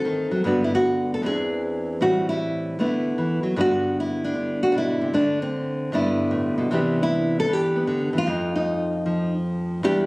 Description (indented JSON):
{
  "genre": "solo jazz",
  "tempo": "153 BPM",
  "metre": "4/4",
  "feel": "swing 66% on 8ths",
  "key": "G major",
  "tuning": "A4 = 440 Hz",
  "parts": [
    { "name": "nylon-string guitar", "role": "solo", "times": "0.0-10.1 s", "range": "E2 to A4", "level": "-20 LUFS", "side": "equal", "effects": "none" }
  ],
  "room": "light reverb",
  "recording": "recorded on a phone in the room, studio reverb, compression",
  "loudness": "-20 LUFS",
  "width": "side -24 dB against mid",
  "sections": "0.0-3.6 A section; 3.6-10.1 A section",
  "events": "none",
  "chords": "0.4 Gmaj7; 1.2 E7b13; 2.0 Am7; 2.8 D69; 3.6 Gmaj7; 5.1 D5; 5.9 G69; 6.7 Cmaj9; 8.3 Ebsus2/F",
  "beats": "0.05 | 0.44 0.83 1.22 1.61 | 2.00 2.40 2.79 3.18 | 3.57 3.96 4.35 4.74 | 5.13 5.53 5.92 6.31 | 6.70 7.09 7.48 7.87 | 8.27 8.66 9.05 9.44 | 9.83"
}